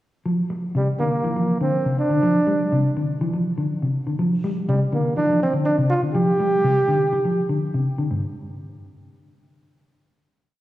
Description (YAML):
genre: afrobeat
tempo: 122 BPM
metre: 4/4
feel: straight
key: G dorian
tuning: A4 = 444 Hz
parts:
  - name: mellow electric guitar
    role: arpeggios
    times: 0.3-8.3 s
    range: G2 to G3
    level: -21 LUFS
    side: left 1 dB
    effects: slapback echo
  - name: clear trombone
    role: melody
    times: 0.8-7.6 s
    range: G3 to G4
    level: -21 LUFS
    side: right 2 dB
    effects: slapback echo
room: moderate lush hall reverb, RT60 2.7 s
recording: live gig heard through the venue's PA, recital hall reverb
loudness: -19 LUFS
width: side -15 dB against mid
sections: 0.3-8.1 groove; 8.1-10.1 final chord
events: none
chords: 0.3 G7(no3); 8.1 N.C.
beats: | 0.26 0.75 1.25 1.74 | 2.23 2.72 3.21 3.70 | 4.19 4.68 5.17 5.66 | 6.15 6.64 7.13 7.62 | 8.11